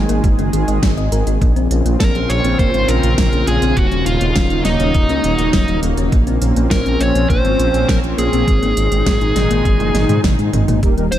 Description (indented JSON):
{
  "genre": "synthwave",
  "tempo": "102 BPM",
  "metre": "4/4",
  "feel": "straight",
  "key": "unclear",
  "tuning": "A4 = 440 Hz",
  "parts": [
    { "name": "lush unison pad", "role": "sustained chords", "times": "0.0-11.2 s", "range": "Bb2 to Ab4", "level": "-22 LUFS", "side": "right 1 dB", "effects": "chorus, sidechain pumping" },
    { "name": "wide detuned saw bass", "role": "bass", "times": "0.0-11.2 s", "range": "Eb1 to Ab2", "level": "-17 LUFS", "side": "equal", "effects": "chorus" },
    { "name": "thumb-piano-like synth pluck", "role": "arpeggios", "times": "0.1-11.2 s", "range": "G3 to Eb5", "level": "-23 LUFS", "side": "left 5 dB", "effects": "chorus, digital delay" },
    { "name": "pop drum kit", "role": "drums", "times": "0.1-11.2 s", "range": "hi-hat, snare drum, toms", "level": "-22 LUFS", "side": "equal", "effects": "studio reverb" },
    { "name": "electronic kick drum", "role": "drums", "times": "0.2-10.9 s", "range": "none", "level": "-16 LUFS", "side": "equal", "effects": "studio reverb" },
    { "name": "dark smooth lead guitar", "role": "melody", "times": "2.0-11.2 s", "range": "Eb4 to Db5", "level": "-20 LUFS", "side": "equal", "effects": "overdrive, digital delay" },
    { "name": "analog synth brass", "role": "stabs", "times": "10.8-11.1 s", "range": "G3 to Bb4", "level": "-21 LUFS", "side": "right 4 dB", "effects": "chorus" }
  ],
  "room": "little or no reverb",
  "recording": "dark, warm production",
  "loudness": "-13 LUFS",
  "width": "side -12 dB against mid",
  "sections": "0.0-10.8 A section",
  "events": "drum fill 9.7-10.8",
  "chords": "0.0 Absus2; 1.4 Bbmadd9; 3.8 Ebm7; 6.1 Bbmadd9; 8.5 Absus2"
}